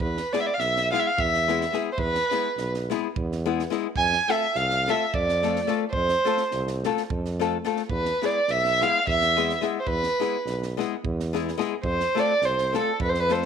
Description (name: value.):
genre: balkan folk, Balkan wedding band.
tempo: 213 BPM (eighths).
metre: 7/8.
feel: straight.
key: E phrygian dominant.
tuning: A4 = 439 Hz.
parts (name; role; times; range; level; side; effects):
dark violin; melody; 0.0-13.5 s; A4 to G#5; -23 LUFS; right 2 dB; none.
warm tuba; bass; 0.0-13.5 s; B1 to F2; -29 LUFS; right 2 dB; none.
compact cocktail drum kit; percussion; 0.0-13.5 s; kick drum, snare drum; -35 LUFS; right 4 dB; none.
nylon-string guitar; accompaniment; 0.3-13.5 s; G#3 to A4; -28 LUFS; left 11 dB; none.
room: light reverb, studio reverb.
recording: 1960s-style stereo.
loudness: -22 LUFS.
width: side -7 dB against mid.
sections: 0.0-13.5 A section.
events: none.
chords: 0.0 E; 4.0 F; 7.9 E; 11.8 F.